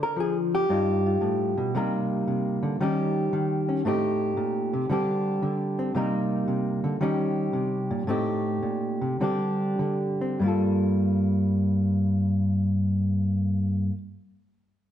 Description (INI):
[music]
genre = solo jazz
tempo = 97-114 BPM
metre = 4/4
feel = swing 68% on 8ths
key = G minor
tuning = A4 = 437 Hz
[part]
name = hollow-body jazz guitar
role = solo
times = 0.0-14.0 s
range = G2 to Bb4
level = -23 LUFS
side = equal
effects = none
[sound]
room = wet stone room reverb, RT60 1.2 s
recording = band playing live in one room, nothing above 10.5 kHz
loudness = -23 LUFS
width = side -10 dB against mid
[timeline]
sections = 0.0-1.7 A section; 1.7-10.4 B section; 10.4-14.9 C section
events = slowing down 5.9-10.4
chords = 0.0 Ddim; 0.7 G7b13; 1.7 Cm7; 2.8 Eb7; 3.8 Am7b5; 4.9 D7sus4; 5.9 Cm7; 7.0 Eb7; 8.1 Am7b5; 9.2 D7sus4; 10.4 Gm9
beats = 0.17 0.69 1.22 | 1.74 2.26 2.79 3.31 | 3.84 4.36 4.88 5.41 | 5.93 6.46 6.99 7.53 | 8.07 8.63 9.20 9.79 | 10.39 11.01 11.63 12.24 | 12.86 13.47